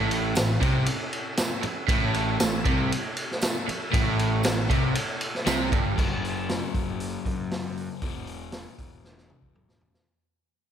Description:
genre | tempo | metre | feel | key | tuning
classic rock | 118 BPM | 4/4 | straight | A major | A4 = 441 Hz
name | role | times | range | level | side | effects
tonewheel organ | sustained chords | 0.0-5.9 s | C#4 to E5 | -37 LUFS | equal | slow rotary speaker, overdrive, chorus vibrato
crunchy overdriven guitar | riff | 0.0-10.1 s | E2 to F#3 | -31 LUFS | left 7 dB | none
overdriven electric guitar | riff | 0.0-6.0 s | G2 to C3 | -30 LUFS | right 10 dB | slapback echo
fuzz picked electric bass | bass | 0.0-9.9 s | E1 to F#2 | -31 LUFS | equal | overdrive
vintage drum kit | drums | 0.1-10.1 s | crash cymbal, hi-hat, kick drum, ride cymbal, snare drum, toms | -27 LUFS | equal | none
tambourine | percussion | 0.4-5.6 s | none | -39 LUFS | right 7 dB | none
room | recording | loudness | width
light reverb, studio ambience | none | -23 LUFS | side -9 dB against mid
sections
0.0-6.0 A section; 6.0-10.1 B section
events
fade-out 6.0-10.1; drum fill 9.0-10.1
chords
0.0 A; 6.0 F#5; 8.0 E5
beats
0.36 0.87 1.38 | 1.89 2.40 2.91 3.42 | 3.93 4.44 4.95 5.46 | 5.97 6.48 6.99 7.50 | 8.02 8.53 9.04 9.55

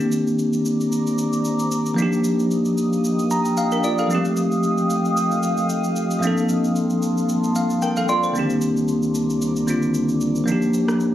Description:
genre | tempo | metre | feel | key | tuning
amapiano | 113 BPM | 4/4 | swing 55% on 16ths | unclear | A4 = 440 Hz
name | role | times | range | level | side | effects
bell-like tine electric piano | accompaniment | 0.0-11.1 s | G2 to C6 | -19 LUFS | equal | medium stereo tremolo
deep dark ambient pad | sustained chords | 1.0-11.1 s | G3 to Eb6 | -27 LUFS | equal | chorus, built-in reverb, phaser
electronic shaker and rim click | drums | 0.0-11.1 s | none | -35 LUFS | equal | none
saturated sub bass | bass | 8.4-11.1 s | C2 to Eb2 | -30 LUFS | left 2 dB | none
room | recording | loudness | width
light reverb, digital ambience | recorded on a phone in the room, club reverb | -18 LUFS | side -12 dB against mid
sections
0.0-11.1 A section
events
tine electric piano fill 3.0-4.1, 7.3-8.3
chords
0.0 Cm9; 2.0 Ebmaj9; 4.1 F9; 6.2 Gm11; 8.3 Cm9; 10.5 Ebmaj9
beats
0.39 0.92 1.45 | 1.98 2.51 3.04 3.57 | 4.10 4.63 5.16 5.70 | 6.23 6.76 7.29 7.82 | 8.35 8.88 9.41 9.94 | 10.47 11.01

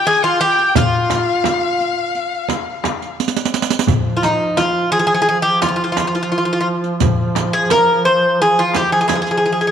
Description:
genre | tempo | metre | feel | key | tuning
Turkish makam ensemble | 173 BPM (eighths) | 9/8 | straight | F makam nihavent | A4 = 440 Hz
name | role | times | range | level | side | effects
Greek bouzouki | melody | 0.0-9.7 s | Eb4 to C5 | -15 LUFS | equal | none
rich violin | second line | 0.0-3.2 s | F5 to Ab5 | -21 LUFS | left 8 dB | none
riq | percussion | 0.1-9.4 s | none | -22 LUFS | right 8 dB | none
darbuka | percussion | 0.6-9.4 s | none | -23 LUFS | left 6 dB | none
frame drum | percussion | 0.8-9.3 s | none | -22 LUFS | right 5 dB | none
warm duduk | drone | 3.9-9.7 s | F3 | -23 LUFS | right 2 dB | stereo widening
room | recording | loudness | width
wet echo chamber reverb, RT60 2.0 s, small room ambience | 1960s-style stereo with parts hard left and right | -14 LUFS | side -8 dB against mid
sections
0.0-3.9 A section; 3.9-9.7 B section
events
drum fill 3.2-3.9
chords
none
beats
0.07 0.41 | 0.76 1.11 1.45 1.80 2.15 2.49 2.84 3.19 3.54 | 3.88 4.23 4.58 4.92 5.27 5.62 5.97 6.31 6.66 | 7.01 7.36 7.70 8.05 8.40 8.74 9.09 9.44

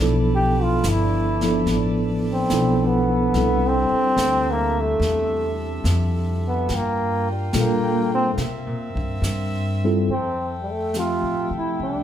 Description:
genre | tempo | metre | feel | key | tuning
jazz ballad | 71 BPM | 4/4 | swing 69% on 8ths | C major | A4 = 439 Hz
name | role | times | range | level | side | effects
mellow tine electric piano | accompaniment | 0.0-12.0 s | F3 to E5 | -23 LUFS | equal | medium stereo tremolo
mellow saxophone section | sustained chords | 0.0-12.0 s | C3 to G5 | -32 LUFS | equal | none
upright bass | bass | 0.0-12.0 s | G1 to C3 | -24 LUFS | equal | none
bright trombone | melody | 0.4-12.0 s | G3 to G4 | -23 LUFS | equal | none
jazz brush drum kit | drums | 0.8-12.0 s | brushed snare drum, hi-hat, kick drum, snare drum | -32 LUFS | equal | none
room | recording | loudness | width
moderate recital hall reverb, RT60 1.5 s | recorded in a church or concert hall | -19 LUFS | side -10 dB against mid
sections
0.0-10.1 A section; 10.1-12.0 B section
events
trombone solo 0.0-10.1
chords
0.0 G13; 3.4 C6; 6.7 Gm7; 8.4 C7; 10.1 Fmaj9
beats
| 0.00 0.84 1.68 2.52 | 3.36 4.20 5.04 5.88 | 6.72 7.56 8.41 9.26 | 10.11 10.96 11.80

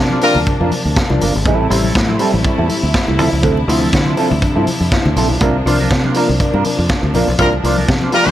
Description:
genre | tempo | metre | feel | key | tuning
disco | 121 BPM | 4/4 | swing 56% on 16ths | unclear | A4 = 440 Hz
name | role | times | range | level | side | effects
mellow electric guitar | accompaniment | 0.0-8.3 s | F3 to C5 | -20 LUFS | right 4 dB | wah, warbly pitch drift
warm concert grand piano | accompaniment | 0.0-8.3 s | A2 to E4 | -20 LUFS | left 3 dB | none
dark studio string section | sustained chords | 0.0-8.3 s | C3 to E4 | -21 LUFS | right 1 dB | none
fingered electric bass | bass | 0.0-8.3 s | G1 to D3 | -17 LUFS | equal | none
congas | percussion | 0.1-8.3 s | none | -26 LUFS | left 5 dB | none
warm horn section | stabs | 0.2-0.4, 7.4-8.3 s | G3 to Bb4 | -15 LUFS | left 2 dB | none
vintage drum kit | drums | 0.2-8.3 s | hi-hat, kick drum, snare drum | -18 LUFS | equal | none
room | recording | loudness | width
light reverb, small room ambience | none | -12 LUFS | side -12 dB against mid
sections
0.0-8.3 A section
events
band accent 0.0-1.5, 7.4-8.3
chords
0.0 C9sus4; 1.5 Am7; 3.2 Dm9; 5.4 C9sus4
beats
0.47 0.96 | 1.46 1.95 2.44 2.94 | 3.43 3.93 4.42 4.92 | 5.41 5.90 6.40 6.89 | 7.39 7.88

